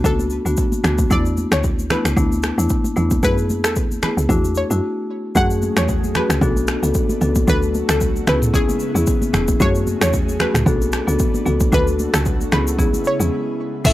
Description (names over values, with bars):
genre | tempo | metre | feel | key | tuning
afrobeats | 113 BPM | 4/4 | swing 55% on 16ths | unclear | A4 = 440 Hz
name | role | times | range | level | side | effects
marimba with medium mallets | accompaniment | 0.0-13.9 s | A3 to A4 | -22 LUFS | left 2 dB | none
woody log drum bass | bass | 0.0-13.9 s | E1 to F#2 | -20 LUFS | equal | none
afro-pop drum kit | drums | 0.0-13.9 s | crash cymbal, finger snaps, kick drum, rim click, shaker, toms | -20 LUFS | equal | none
congas | percussion | 0.0-13.0 s | none | -27 LUFS | right 1 dB | none
analog pluck | melody | 0.1-13.9 s | G#4 to F#5 | -23 LUFS | equal | chorus
airy breathy pad | sustained chords | 5.4-13.9 s | C#3 to A4 | -28 LUFS | left 1 dB | chorus
room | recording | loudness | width
digital ambience | dry, gritty hardware recording, transformer saturation | -16 LUFS | side -15 dB against mid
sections
0.0-5.4 A section; 5.4-13.8 B section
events
break 4.8-5.4, 13.3-13.8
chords
0.0 D6; 1.1 E7sus4; 3.2 F#m11; 4.3 E9sus4; 5.4 F#madd9; 6.4 Bm7; 7.5 D; 8.3 C#m7; 9.6 F#madd9; 10.7 Bm7; 11.7 D; 12.5 C#m7